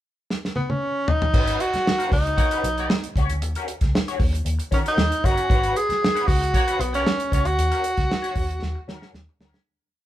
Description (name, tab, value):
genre	funk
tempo	115 BPM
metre	4/4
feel	straight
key	G# minor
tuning	A4 = 442 Hz
part	warm soul drum kit	drums	0.3-9.7 s	crash cymbal, hi-hat, kick drum, snare drum, toms	-23 LUFS	equal	none
part	breathy tenor saxophone	melody	0.6-9.1 s	B3 to G#4	-23 LUFS	equal	none
part	electric guitar through a small old amp	accompaniment	1.3-9.6 s	C#4 to C#5	-32 LUFS	left 3 dB	wah
part	vintage muted fingered electric bass	bass	1.3-9.5 s	G1 to D#3	-26 LUFS	equal	none
part	clear horn section	second line	2.4-2.9, 6.5-7.0 s	A#3 to C#5	-31 LUFS	left 1 dB	none
room	light reverb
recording	band playing live in one room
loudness	-20 LUFS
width	side -13 dB against mid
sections	0.0-1.3 pickup bar; 1.3-9.7 groove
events	drum fill 0.3-1.3, 8.6-9.7; fade-out 7.6-9.7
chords	0.0 N.C.; 1.3 G#m11 (rootless); 3.4 D#m7; 5.5 G#m11; 7.6 D#m7